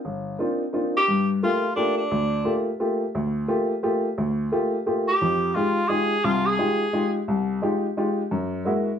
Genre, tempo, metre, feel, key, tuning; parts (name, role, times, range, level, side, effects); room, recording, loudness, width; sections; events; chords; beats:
jazz; 174 BPM; 3/4; swing 64% on 8ths; G phrygian; A4 = 439 Hz
warm upright piano; accompaniment; 0.0-8.9 s; G1 to G4; -23 LUFS; left 1 dB
clear tenor saxophone; melody; 1.0-2.6, 5.1-7.2 s; D4 to Ab4; -23 LUFS; equal
wet studio reverb, RT60 0.5 s; band playing live in one room; -21 LUFS; side -8 dB against mid
0.0-1.1 A section; 1.1-9.0 B section
0.0 Cm11; 1.1 Gm9; 5.2 Fm9; 8.3 F#9
| 0.04 0.38 0.73 | 1.07 1.42 1.76 | 2.11 2.45 2.80 | 3.14 3.48 3.83 | 4.17 4.52 4.86 | 5.21 5.55 5.90 | 6.24 6.58 6.93 | 7.27 7.62 7.96 | 8.31 8.65